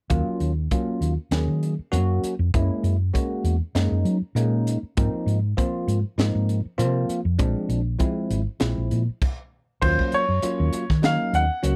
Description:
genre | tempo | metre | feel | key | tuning
electric jazz fusion | 99 BPM | 4/4 | swing 56% on 16ths | Eb dorian | A4 = 440 Hz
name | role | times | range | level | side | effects
bell-like tine electric piano | accompaniment | 0.1-11.8 s | F3 to Ab4 | -29 LUFS | equal | phaser
hollow-body short-scale fingered electric bass | bass | 0.1-11.8 s | Ab1 to Gb3 | -25 LUFS | equal | none
crisp fusion drum kit | drums | 0.1-11.8 s | crash cymbal, hi-hat, kick drum, snare drum | -28 LUFS | equal | none
clear grand piano | melody | 9.8-11.8 s | C5 to Gb5 | -26 LUFS | equal | slapback echo
room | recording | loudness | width
little or no reverb | none | -24 LUFS | mono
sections
0.1-9.8 A section; 9.8-11.8 B section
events
stop 9.2-9.8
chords
0.1 Ebm9; 2.5 Gb9; 5.0 Ab69; 7.4 Bb9; 9.8 Ebm9

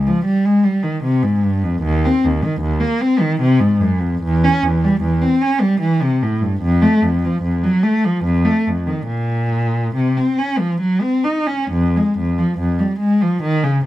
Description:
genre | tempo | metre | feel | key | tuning
classical, baroque-style suite movement for unaccompanied cello | 64-77 BPM | 3/4 | rubato | Bb minor | A4 = 439 Hz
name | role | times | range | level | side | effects
rich cello | solo | 0.0-13.9 s | Eb2 to Eb4 | -15 LUFS | equal | none
room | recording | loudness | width
light reverb | minimal, uncompressed stereo recording | -15 LUFS | side -14 dB against mid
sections
0.0-11.8 A section; 11.8-13.9 A section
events
none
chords
none

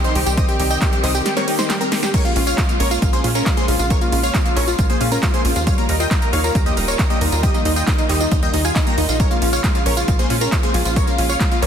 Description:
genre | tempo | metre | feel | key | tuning
uplifting trance | 136 BPM | 4/4 | straight | Bb dorian | A4 = 440 Hz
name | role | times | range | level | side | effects
supersaw stab | melody | 0.0-11.7 s | Db4 to Bb5 | -22 LUFS | right 1 dB | sidechain pumping, tape echo
plucky unison lead | second line | 0.0-11.7 s | Eb5 to Bb6 | -28 LUFS | equal | sidechain pumping, digital delay
rich chamber string section | sustained chords | 0.0-11.7 s | Db3 to G4 | -28 LUFS | equal | sidechain pumping
analog pluck | arpeggios | 0.0-11.7 s | G3 to G4 | -26 LUFS | left 5 dB | chorus, sidechain pumping, digital delay
big-room dance drum kit | drums | 0.0-11.7 s | crash cymbal, handclaps, hi-hat, ride cymbal, snare drum, tambourine | -24 LUFS | right 2 dB | overdrive
tight sequencer bass | bass | 0.2-11.7 s | Eb1 to Bb2 | -22 LUFS | equal | sidechain pumping
electronic kick drum | drums | 0.4-11.5 s | none | -19 LUFS | equal | overdrive
swell | sound effects | 1.5-2.1 s | none | -29 LUFS | left 4 dB | none
room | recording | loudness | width
light reverb, digital ambience | dense, heavily limited modern master | -15 LUFS | side -8 dB against mid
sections
0.0-11.7 A section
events
drum fill 1.3-2.1; swell 1.5-2.1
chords
0.0 Cm; 2.1 Bbm7; 5.7 Ebadd9; 9.2 Bbm7

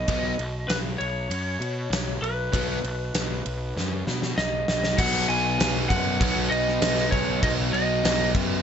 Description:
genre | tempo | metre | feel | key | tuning
hard rock | 98 BPM | 4/4 | straight | B major | A4 = 440 Hz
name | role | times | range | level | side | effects
lightly driven lead guitar | melody | 0.0-8.3 s | B4 to G#5 | -28 LUFS | equal | none
fuzz picked electric bass | bass | 0.0-8.6 s | B1 to B2 | -28 LUFS | equal | overdrive
biting overdriven guitar | riff | 0.1-8.6 s | B2 to B3 | -27 LUFS | equal | none
gated 80s drum kit | drums | 0.1-8.5 s | crash cymbal, kick drum, ride cymbal, snare drum | -27 LUFS | equal | none
room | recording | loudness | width
moderate large studio reverb, RT60 1.3 s, small room ambience | nothing above 7.9 kHz | -22 LUFS | side -8 dB against mid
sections
0.0-5.0 A section; 5.0-8.6 B section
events
drum fill 3.8-5.0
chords
0.0 B

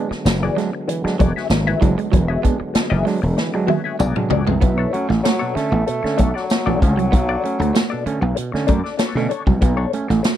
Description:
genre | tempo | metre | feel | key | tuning
funk | 96 BPM | 4/4 | straight | B dorian | A4 = 440 Hz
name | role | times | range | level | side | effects
tonewheel organ | sustained chords | 0.0-4.6 s | D3 to B3 | -29 LUFS | equal | slow rotary speaker, overdrive, chorus vibrato
electric guitar at the edge of break-up | riff | 0.0-10.3 s | E3 to B3 | -24 LUFS | right 10 dB | harmonic tremolo
auto-wah clav | stabs | 0.0-10.3 s | B2 to D4 | -25 LUFS | right 3 dB | overdrive, tape echo
direct-recorded clean electric guitar | accompaniment | 0.1-10.3 s | D4 to E5 | -24 LUFS | left 8 dB | wah
gritty slap bass | bass | 0.1-10.2 s | E1 to B2 | -19 LUFS | left 1 dB | overdrive
swinging big-band drum kit | drums | 0.1-10.4 s | hi-hat, kick drum, snare drum, toms | -20 LUFS | equal | none
tambourine | percussion | 0.3-10.4 s | none | -35 LUFS | left 5 dB | none
warm bassoon | melody | 4.6-8.0 s | E3 to A3 | -24 LUFS | left 1 dB | none
room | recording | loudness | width
little or no reverb | none | -16 LUFS | side -11 dB against mid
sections
0.0-4.6 A section; 4.6-10.4 B section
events
drum fill 3.4-4.6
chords
0.0 E9; 4.6 Bm9

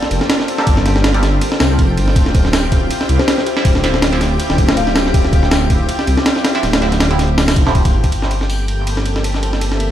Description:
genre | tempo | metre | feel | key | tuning
drum and bass, jungle | 161 BPM | 4/4 | swing 55% on 16ths | G dorian | A4 = 441 Hz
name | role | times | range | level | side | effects
lush unison pad | sustained chords | 0.0-9.9 s | F3 to A4 | -23 LUFS | equal | chorus, vintage 12-bit sampler grit
breakbeat sampler-style drum kit | drums | 0.0-9.9 s | hi-hat, kick drum, ride cymbal, snare drum | -15 LUFS | equal | high-pass filter on cymbals, high-pass filter on kick, high-pass filter on snare, high-pass filter on hats
backwards swelling texture | texture | 0.0-9.9 s | E4 to G5 | -27 LUFS | left 2 dB | built-in reverb
dark detuned saw bass | bass | 0.1-9.9 s | D1 to C2 | -16 LUFS | equal | none
band-passed chord stab | stabs | 0.6-1.2, 3.6-4.2, 6.5-7.8 s | D3 to A4 | -24 LUFS | right 3 dB | phaser, lush chorus, dub echo
kalimba | melody | 3.2-5.1 s | C5 to F5 | -26 LUFS | left 5 dB | vintage 12-bit sampler grit, dub echo
room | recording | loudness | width
light reverb | played on a big sound system in a bare room, stone room reverb | -12 LUFS | side -11 dB against mid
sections
0.0-8.1 A section; 8.1-9.9 B section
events
drop 0.0-8.1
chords
0.0 Gm11; 2.2 Dm11; 8.1 Gm11

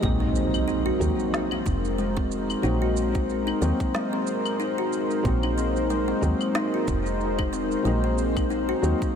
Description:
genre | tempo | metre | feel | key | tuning
organic downtempo | 92 BPM | 4/4 | swing 56% on 16ths | unclear | A4 = 440 Hz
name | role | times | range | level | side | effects
felt-muted upright piano | accompaniment | 0.0-9.2 s | Gb3 to Eb4 | -30 LUFS | equal | analog chorus, sidechain pumping, diffuse ambient delay
warm analog pad | sustained chords | 0.0-9.2 s | Ab3 to C5 | -28 LUFS | equal | chorus, sidechain pumping
kalimba | arpeggios | 0.0-8.8 s | Ab3 to Gb4 | -29 LUFS | left 2 dB | diffuse ambient delay
woody FM bass | bass | 0.0-8.9 s | F1 to Eb2 | -27 LUFS | equal | none
electronic kick drum | drums | 0.0-9.1 s | none | -28 LUFS | equal | none
electronic shaker, claves and snare drum | drums | 0.0-9.1 s | none | -36 LUFS | equal | none
impact | sound effects | 0.0-2.6 s | none | -33 LUFS | right 1 dB | none
room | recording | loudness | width
moderate huge ambient reverb, RT60 8.8 s | dreamy mix soaked in reverb | -22 LUFS | side -7 dB against mid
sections
0.0-9.2 A section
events
impact 0.0-2.6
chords
0.0 Ab7

